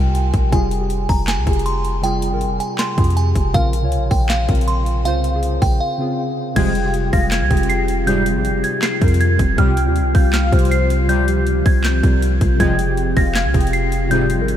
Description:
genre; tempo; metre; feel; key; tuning
hip hop, trap; 159 BPM; 4/4; half-time; F minor; A4 = 438 Hz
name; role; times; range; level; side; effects
delicate synth tine bell; melody; 0.0-14.6 s; F5 to C7; -23 LUFS; right 1 dB; chorus, low-pass filter, tape echo
warbly lo-fi synth keys; accompaniment; 0.0-14.6 s; C3 to Db5; -22 LUFS; right 1 dB; chorus, low-pass filter
warm 808-style bass; bass; 0.0-14.6 s; F1 to F2; -19 LUFS; equal; none
trap drum kit; drums; 0.1-14.6 s; crash cymbal, handclaps, hi-hat, kick drum, snare drum; -20 LUFS; equal; overdrive
warm velvety synth lead; second line; 6.6-14.1 s; C5 to G5; -28 LUFS; left 3 dB; chorus, tape echo
glassy FM pad; sustained chords; 7.3-14.6 s; F3 to F4; -25 LUFS; left 2 dB; ensemble chorus, built-in reverb, phaser
analog synth brass; stabs; 6.6-14.3 s; Ab2 to Ab3; -27 LUFS; left 2 dB; chorus, tape echo
room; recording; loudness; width
light reverb; none; -15 LUFS; side -10 dB against mid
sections
0.0-6.6 A section; 6.6-14.6 B section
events
break 5.8-6.6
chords
0.0 Csus4; 0.5 Fmadd9; 3.5 Bbmadd9; 6.6 Fmadd9; 9.6 Csus4; 12.6 Fmadd9

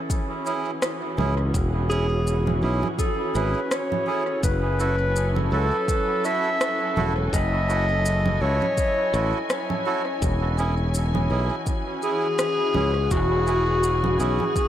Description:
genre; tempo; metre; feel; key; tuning
ambient dub; 83 BPM; 4/4; swing 57% on 16ths; unclear; A4 = 438 Hz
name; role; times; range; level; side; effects
dark studio string section; sustained chords; 0.0-14.7 s; E3 to G#5; -30 LUFS; left 1 dB; none
electronic kick drum; drums; 0.1-14.7 s; none; -26 LUFS; equal; small room ambience
electronic shaker, rim click and congas; drums; 0.1-14.7 s; none; -30 LUFS; right 2 dB; overdrive, small room ambience, dub echo
melodica; stabs; 0.5-14.4 s; C#4 to A4; -30 LUFS; right 5 dB; dub echo
modern bright fingered electric bass; bass; 1.2-14.4 s; E1 to C#2; -23 LUFS; equal; none
warm clarinet; melody; 1.9-14.7 s; F#4 to E5; -25 LUFS; left 1 dB; dub echo
room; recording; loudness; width
light reverb, small room ambience; none; -21 LUFS; side -11 dB against mid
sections
0.0-14.7 A section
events
none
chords
0.0 E6; 4.4 F#m7; 10.2 E6

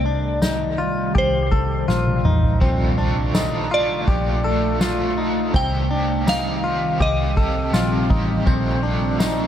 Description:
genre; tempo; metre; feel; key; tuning
dream pop; 82 BPM; 4/4; straight; unclear; A4 = 445 Hz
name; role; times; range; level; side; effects
glassy synth bell; melody; 0.0-8.1 s; C5 to G5; -25 LUFS; equal; chorus, tremolo, dub echo
ethereal airy pad; sustained chords; 0.0-9.5 s; C3 to D5; -26 LUFS; right 1 dB; ensemble chorus, built-in reverb, phaser
direct-recorded clean electric guitar; arpeggios; 0.0-9.5 s; C4 to A4; -25 LUFS; left 3 dB; lush chorus, dub echo
vintage muted picked electric bass; bass; 0.0-9.5 s; A1 to C2; -23 LUFS; equal; none
soft-mallet drum kit; drums; 0.4-9.4 s; kick drum, ride cymbal, snare drum, tambourine, toms; -23 LUFS; equal; none
crunchy overdriven guitar; accompaniment; 2.6-9.5 s; Bb2 to G4; -28 LUFS; right 2 dB; tremolo, lush chorus, dub echo
glockenspiel with brass mallets; texture; 8.5-9.5 s; Bb5 to G6; -36 LUFS; left 7 dB; dub echo
room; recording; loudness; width
light reverb, small room ambience; echo-heavy mix; -17 LUFS; side -10 dB against mid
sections
0.0-9.5 A section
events
drum fill 1.9-2.6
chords
0.0 Cm7; 2.6 Bbmaj7; 5.5 Cm7; 8.5 Bbmaj7

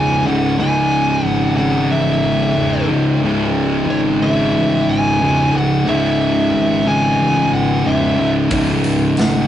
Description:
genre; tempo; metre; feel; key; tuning
stoner and doom metal; 91 BPM; 4/4; straight; C# minor; A4 = 440 Hz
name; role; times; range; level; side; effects
fuzz lead guitar; melody; 0.0-9.5 s; C#5 to G#5; -20 LUFS; right 1 dB; distortion, analog delay
thick fuzz guitar; riff; 0.0-9.5 s; C#2 to C#3; -17 LUFS; left 4 dB; distortion
thick fuzz guitar; riff; 0.0-9.5 s; C#2 to C#3; -19 LUFS; right 4 dB; distortion
fuzz fingered electric bass; bass; 0.0-9.5 s; C#1 to A1; -24 LUFS; equal; overdrive
big rock drum kit; drums; 8.5-9.3 s; hi-hat, kick drum, snare drum; -20 LUFS; equal; none
room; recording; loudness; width
moderate studio reverb, RT60 0.6 s; rough rehearsal-room recording, warm saturation, nothing above 10.6 kHz; -13 LUFS; side -11 dB against mid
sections
0.0-9.5 A section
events
none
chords
0.0 C#m

